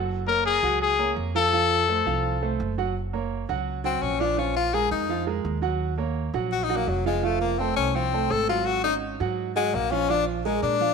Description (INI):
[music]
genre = latin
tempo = 168 BPM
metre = 4/4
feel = straight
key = unclear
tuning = A4 = 439 Hz
[part]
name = clear concert grand piano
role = accompaniment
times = 0.0-10.9 s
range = F3 to Gb5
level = -28 LUFS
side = right 11 dB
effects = none
[part]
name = upright bass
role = bass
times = 0.0-10.9 s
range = F1 to Bb2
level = -30 LUFS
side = right 1 dB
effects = none
[part]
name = bright trumpet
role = melody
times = 0.3-2.6 s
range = Ab4 to Bb4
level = -22 LUFS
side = left 6 dB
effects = none
[part]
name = bright tenor saxophone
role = melody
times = 3.9-10.9 s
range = F3 to A4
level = -25 LUFS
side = left 8 dB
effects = none
[sound]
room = moderate echo chamber reverb, RT60 1.6 s, small room ambience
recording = 1960s-style stereo with parts hard left and right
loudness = -22 LUFS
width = side -5 dB against mid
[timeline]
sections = 0.0-3.0 A section; 3.0-10.9 B section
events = tenor saxophone solo 3.0-10.9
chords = 0.1 Gbmaj7; 1.5 F; 3.0 Gb; 4.4 Bb5; 5.8 Ebm7; 7.2 F; 8.7 Ab7sus4; 10.1 Bb7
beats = | 0.10 0.45 0.81 1.17 | 1.52 1.88 2.24 2.60 | 2.95 3.31 3.67 4.03 | 4.38 4.74 5.10 5.45 | 5.81 6.17 6.52 6.88 | 7.24 7.59 7.95 8.31 | 8.66 9.02 9.38 9.73 | 10.09 10.45 10.80